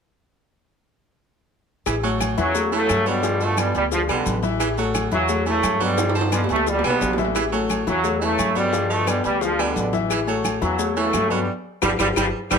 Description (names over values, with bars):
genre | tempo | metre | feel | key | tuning
latin, salsa | 175 BPM | 4/4 | straight | A major | A4 = 440 Hz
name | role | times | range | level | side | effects
bright baritone saxophone | second line | 1.9-12.6 s | E3 to G3 | -28 LUFS | right 8 dB | slapback echo
upright bass | bass | 1.9-12.6 s | G1 to G2 | -28 LUFS | equal | none
agogo bells and timbales | percussion | 1.9-12.6 s | none | -29 LUFS | right 6 dB | none
claves | percussion | 1.9-12.6 s | none | -32 LUFS | left 9 dB | none
congas | percussion | 1.9-12.6 s | none | -31 LUFS | left 1 dB | none
cowbell | percussion | 1.9-12.6 s | none | -31 LUFS | left 7 dB | none
maracas | percussion | 1.9-12.6 s | none | -34 LUFS | left 8 dB | none
clear grand piano | accompaniment | 2.0-12.6 s | E3 to F5 | -25 LUFS | left 5 dB | none
brilliant trombone section | melody | 2.4-12.6 s | F2 to B3 | -22 LUFS | right 1 dB | plate reverb
room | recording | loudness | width
moderate studio ambience, RT60 0.5 s | none | -19 LUFS | side -6 dB against mid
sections
1.9-12.6 A section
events
drum fill 6.0-7.4, 11.8-12.6; band accent 11.5-12.6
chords
1.9 A6; 3.2 G7; 4.6 A6; 6.0 G7; 7.4 A6; 8.7 G7; 10.1 A6; 11.5 G7